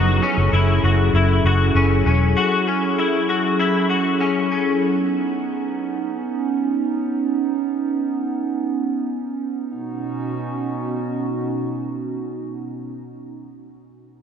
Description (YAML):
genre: dream pop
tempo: 98 BPM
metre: 4/4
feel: straight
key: B mixolydian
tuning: A4 = 439 Hz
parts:
  - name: warbly tape-like pad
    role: sustained chords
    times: 0.0-12.9 s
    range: B2 to A4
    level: -21 LUFS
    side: right 1 dB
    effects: chorus, built-in reverb
  - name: clean electric guitar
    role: arpeggios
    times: 0.0-4.8 s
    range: C#4 to F#4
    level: -22 LUFS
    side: left 3 dB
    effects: ensemble chorus, tape echo
  - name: vintage muted fingered electric bass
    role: bass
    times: 0.0-2.3 s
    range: E1 to F#1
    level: -17 LUFS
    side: equal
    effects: none
room: wet huge ambient reverb, RT60 5.5 s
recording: none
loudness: -18 LUFS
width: side -8 dB against mid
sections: 0.0-9.7 A section; 9.7-12.2 B section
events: none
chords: 0.0 F#m7; 4.8 Badd9